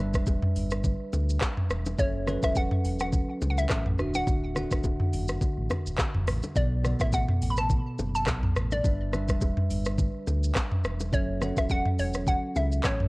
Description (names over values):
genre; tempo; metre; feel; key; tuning
afrobeats; 105 BPM; 4/4; swing 55% on 16ths; unclear; A4 = 439 Hz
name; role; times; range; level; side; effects
hollow square pluck; melody; 0.0-13.1 s; C#5 to B5; -31 LUFS; equal; chorus, cassette tape, tape echo
bell-like tine electric piano; accompaniment; 0.0-13.1 s; B2 to F#5; -33 LUFS; right 1 dB; phaser, cassette tape
sub bass with octave; bass; 0.0-13.1 s; D1 to D2; -30 LUFS; equal; none
afro-pop drum kit; drums; 0.1-13.1 s; handclaps, hi-hat, kick drum, rim click, shaker, toms; -27 LUFS; equal; none
bongos and congas; percussion; 0.3-13.0 s; none; -37 LUFS; left 2 dB; none
room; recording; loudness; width
digital ambience; home recording on cassette; -25 LUFS; side -24 dB against mid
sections
0.0-13.1 A section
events
none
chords
0.0 G6; 2.0 F#m7; 4.0 Dadd9; 6.6 Bm7; 8.8 G6; 11.1 F#m7